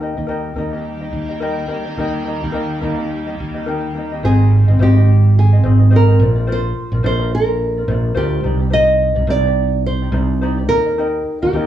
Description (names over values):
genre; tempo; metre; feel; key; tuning
acoustic pop; 107 BPM; 4/4; swing 60% on 16ths; Eb major; A4 = 437 Hz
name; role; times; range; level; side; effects
ukulele; accompaniment; 0.0-11.7 s; C4 to Eb5; -22 LUFS; left 3 dB; none
granular cloud pad; sustained chords; 0.5-4.2 s; Eb3 to G4; -31 LUFS; right 2 dB; built-in reverb
fretless electric bass; bass; 0.0-11.7 s; Ab1 to Eb2; -15 LUFS; right 1 dB; none
nylon-string guitar; melody; 4.2-11.7 s; G4 to Eb5; -18 LUFS; right 1 dB; none
room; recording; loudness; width
wet large studio reverb, RT60 0.8 s; band playing live in one room, small room reverb; -14 LUFS; side -11 dB against mid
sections
0.0-4.2 A section; 4.2-11.7 B section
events
none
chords
0.0 Eb; 4.2 Ab; 6.2 Bbadd9; 8.4 Cmadd9; 10.7 Eb